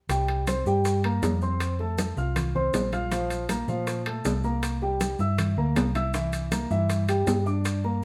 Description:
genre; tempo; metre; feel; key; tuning
latin, salsa; 159 BPM; 4/4; straight; unclear; A4 = 441 Hz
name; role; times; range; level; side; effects
dark grand piano; accompaniment; 0.1-8.0 s; E3 to F6; -31 LUFS; equal; none
hollow-body short-scale fingered electric bass; bass; 0.1-8.0 s; Bb1 to Bb2; -30 LUFS; equal; none
bongos; percussion; 0.1-8.0 s; none; -40 LUFS; equal; none
congas; percussion; 0.1-8.0 s; none; -36 LUFS; equal; none
maracas; percussion; 0.1-7.8 s; none; -44 LUFS; equal; none
timbales; percussion; 0.1-7.8 s; none; -34 LUFS; equal; none
room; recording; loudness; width
moderate stone room reverb, RT60 1.2 s; band playing live in one room; -26 LUFS; mono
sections
0.1-8.0 A section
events
none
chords
0.1 C5; 1.6 Bb5; 4.6 C7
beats
| 0.10 0.47 0.85 1.23 | 1.61 1.98 2.36 2.74 | 3.12 3.49 3.87 4.25 | 4.63 5.00 5.38 5.76 | 6.14 6.52 6.90 7.27 | 7.65 8.03

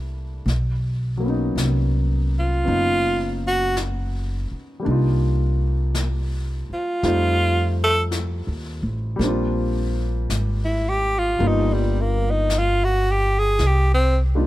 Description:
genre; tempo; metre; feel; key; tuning
jazz ballad; 55 BPM; 4/4; swing 68% on 8ths; unclear; A4 = 440 Hz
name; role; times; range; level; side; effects
warm grand piano; accompaniment; 0.0-14.5 s; F#3 to F4; -27 LUFS; left 1 dB; none
upright bass; bass; 0.0-14.5 s; F#1 to F2; -21 LUFS; equal; none
jazz brush drum kit; drums; 0.5-14.5 s; brushed snare drum, hi-hat, snare drum; -34 LUFS; left 3 dB; none
breathy tenor saxophone; melody; 2.4-14.2 s; G3 to A4; -21 LUFS; right 1 dB; none
room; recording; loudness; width
little or no reverb; close, detailed microphones; -19 LUFS; side -16 dB against mid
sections
0.0-14.5 A section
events
tenor saxophone solo 0.0-14.5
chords
0.5 Bmaj7; 4.9 Cm11; 7.0 F9; 9.2 Bb69; 11.4 G7alt; 13.6 Cm9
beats
| 0.47 1.58 2.67 3.77 | 4.86 5.94 7.03 8.11 | 9.20 10.30 11.40 12.50 | 13.59

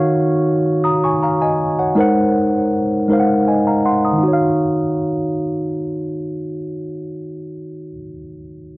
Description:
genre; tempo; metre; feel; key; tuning
R&B; 53 BPM (dotted quarters); 6/8; straight; Eb minor; A4 = 439 Hz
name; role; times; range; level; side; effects
mellow tine electric piano; solo; 0.0-8.8 s; Eb3 to Eb6; -16 LUFS; equal; analog delay
room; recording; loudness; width
light reverb; home recording on cassette, low-pass filter; -15 LUFS; side -20 dB against mid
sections
0.0-4.2 A section; 4.2-6.5 B section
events
tine electric piano fill 3.1-4.2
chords
0.0 Ebm9; 2.0 Ab9; 4.2 Ebm9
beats
0.83 | 1.96 3.09 | 4.22 5.36

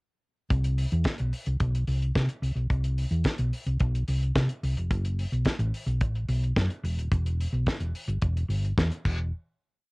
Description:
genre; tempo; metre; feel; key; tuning
disco; 109 BPM; 4/4; straight; unclear; A4 = 440 Hz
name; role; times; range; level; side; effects
hollow-body short-scale fingered electric bass; bass; 0.5-9.3 s; D#1 to C3; -26 LUFS; equal; none
damped 70s drum kit; drums; 0.5-9.2 s; crash cymbal, hi-hat, kick drum, snare drum; -29 LUFS; equal; cassette tape
room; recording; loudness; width
little or no reverb; home recording on cassette; -25 LUFS; side -30 dB against mid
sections
0.5-9.3 verse; 9.3-9.9 final hit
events
none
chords
none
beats
| 0.51 1.06 1.60 2.15 | 2.70 3.25 3.80 4.35 | 4.90 5.45 6.00 6.56 | 7.11 7.66 8.21 8.77

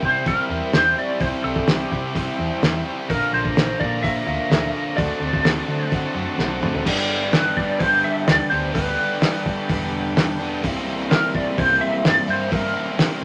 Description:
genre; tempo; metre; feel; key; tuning
psychedelic rock; 127 BPM; 4/4; straight; unclear; A4 = 441 Hz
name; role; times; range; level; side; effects
lightly driven lead guitar; melody; 0.0-13.2 s; G4 to E5; -24 LUFS; equal; wah
combo organ; sustained chords; 0.0-13.2 s; Bb3 to Bb5; -33 LUFS; equal; none
biting overdriven guitar; riff; 0.0-13.2 s; G2 to F#4; -27 LUFS; equal; none
hollow-body short-scale fingered electric bass; bass; 0.0-12.7 s; E1 to D3; -32 LUFS; equal; none
cloth-damped thuddy drum kit; drums; 0.0-13.1 s; crash cymbal, hi-hat, kick drum, snare drum, toms; -24 LUFS; equal; none
room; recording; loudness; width
moderate studio reverb, RT60 0.5 s; none; -21 LUFS; mono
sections
0.0-6.9 A section; 6.9-13.2 B section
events
drum fill 6.4-6.9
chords
0.0 C; 3.1 Bb; 5.0 D7; 6.9 G; 10.6 C7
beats
0.26 0.73 | 1.21 1.68 2.15 2.62 | 3.09 3.56 4.03 4.51 | 4.98 5.45 5.92 6.39 | 6.86 7.33 7.80 8.28 | 8.75 9.22 9.69 10.16 | 10.63 11.10 11.58 12.05 | 12.52 12.99

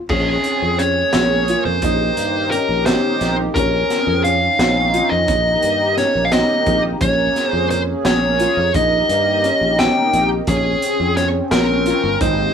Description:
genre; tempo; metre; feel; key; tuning
progressive instrumental, band music in an uneven meter; 173 BPM (eighths); 5/8; straight; Bb dorian; A4 = 440 Hz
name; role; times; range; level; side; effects
fuzz lead guitar; melody; 0.1-12.5 s; Ab4 to G5; -18 LUFS; left 1 dB; distortion
sweeping resonant pad; accompaniment; 0.1-12.5 s; Bb3 to Ab4; -23 LUFS; equal; chorus
dark baby grand piano; arpeggios; 0.1-12.5 s; C4 to F4; -24 LUFS; right 1 dB; none
sustaining fretless electric bass; bass; 0.1-12.5 s; G1 to G2; -22 LUFS; right 1 dB; none
crunchy breakbeat drum kit; drums; 0.1-12.4 s; crash cymbal, hi-hat, kick drum, snare drum; -22 LUFS; equal; none
room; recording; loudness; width
moderate studio ambience, RT60 0.5 s; band playing live in one room, faint mains hum; -14 LUFS; side -7 dB against mid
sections
0.1-12.5 A section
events
none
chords
0.1 Bbm7; 1.8 Cm7/Bb; 3.6 Bbm7; 5.3 Cm7/Bb; 7.0 Bbm7; 8.8 Cm7/Bb; 10.5 Bbm7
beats
| 0.10 0.44 0.79 1.14 1.48 | 1.83 2.17 2.52 2.87 3.21 | 3.56 3.91 4.25 4.60 4.94 | 5.29 5.64 5.98 6.33 6.67 | 7.02 7.37 7.71 8.06 8.41 | 8.75 9.10 9.44 9.79 10.14 | 10.48 10.83 11.18 11.52 11.87 | 12.21

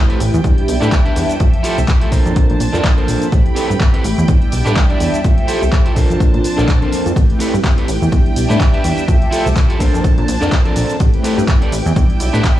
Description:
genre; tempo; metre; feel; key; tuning
filtered disco house; 125 BPM; 4/4; swing 56% on 16ths; A minor; A4 = 440 Hz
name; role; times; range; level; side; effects
mellow synth brass; accompaniment; 0.0-12.6 s; F3 to A5; -21 LUFS; equal; chorus, phaser, sidechain pumping
rich studio violin section; sustained chords; 0.0-12.6 s; D4 to B5; -27 LUFS; equal; sidechain pumping
clean electric guitar; riff; 0.1-12.6 s; C4 to D5; -21 LUFS; right 1 dB; sidechain pumping
punchy analog drum machine; drums; 0.1-12.6 s; handclaps, hi-hat, ride cymbal, shaker; -25 LUFS; equal; sidechain pumping on hats, sidechain pumping on cymbals, sidechain pumping on perc
plucky analog bass; bass; 0.2-12.4 s; A1 to Bb2; -17 LUFS; equal; tube saturation, sidechain pumping
electronic kick drum; drums; 0.4-12.6 s; none; -14 LUFS; equal; none
room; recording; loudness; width
little or no reverb; dry, gritty hardware recording, cassette tape, studio reverb; -12 LUFS; side -13 dB against mid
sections
0.0-12.6 A section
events
none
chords
0.4 Em7; 1.4 Fmaj9; 2.1 Bbmaj9; 3.3 Am9; 4.3 Em7; 5.2 Fmaj9; 6.0 Bbmaj9; 7.2 Am9; 8.1 Em7; 9.1 Fmaj9; 9.8 Bbmaj9; 11.0 Am9; 12.0 Em7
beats
0.44 0.92 | 1.40 1.88 2.36 2.84 | 3.32 3.80 4.28 4.76 | 5.24 5.72 6.20 6.68 | 7.16 7.64 8.12 8.60 | 9.08 9.56 10.04 10.52 | 11.00 11.48 11.96 12.44

